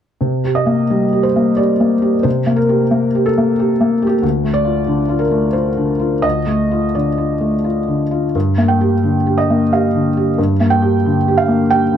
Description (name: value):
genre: neoclassical minimalist piano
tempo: 89 BPM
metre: 3/4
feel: uneven beats, rubato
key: C dorian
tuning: A4 = 436 Hz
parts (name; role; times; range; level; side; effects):
- felt-muted upright piano; solo; 0.2-12.0 s; D2 to G5; -13 LUFS; equal; none
room: moderate small room ambience, RT60 0.5 s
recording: dark, warm production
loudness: -13 LUFS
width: side -9 dB against mid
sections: 0.2-12.0 A section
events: none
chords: 0.2 Cm7; 4.2 Dm; 8.3 Gm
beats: | 0.21 0.91 1.59 | 2.25 2.92 3.59 | 4.23 4.88 5.55 | 6.24 6.95 7.65 | 8.34 9.03 9.71 | 10.38 11.04 11.70